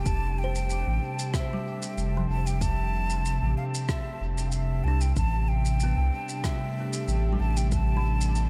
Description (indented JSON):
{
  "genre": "ambient dub",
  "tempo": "94 BPM",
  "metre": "4/4",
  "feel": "swing 54% on 16ths",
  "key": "unclear",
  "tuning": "A4 = 440 Hz",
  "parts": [
    { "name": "breathy silver concert flute", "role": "melody", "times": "0.0-8.5 s", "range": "E5 to A5", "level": "-37 LUFS", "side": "equal", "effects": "dub echo" },
    { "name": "airy breathy pad", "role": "sustained chords", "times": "0.0-8.5 s", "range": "C3 to G4", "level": "-35 LUFS", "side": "equal", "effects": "chorus" },
    { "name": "kalimba", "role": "arpeggios", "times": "0.0-8.5 s", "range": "E3 to D6", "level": "-41 LUFS", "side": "equal", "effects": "dub echo" },
    { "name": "warm sub bass", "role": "bass", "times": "0.0-8.5 s", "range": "F1 to C2", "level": "-28 LUFS", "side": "equal", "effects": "none" },
    { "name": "electronic kick drum", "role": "drums", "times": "0.1-7.9 s", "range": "none", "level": "-32 LUFS", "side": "equal", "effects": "none" },
    { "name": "shaker and rim click", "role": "drums", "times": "0.1-8.5 s", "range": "none", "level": "-40 LUFS", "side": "equal", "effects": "none" }
  ],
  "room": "small room ambience",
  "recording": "none",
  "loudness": "-27 LUFS",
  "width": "mono",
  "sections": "0.0-8.5 A section",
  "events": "none",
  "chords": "0.1 Fmaj7; 5.2 Am7"
}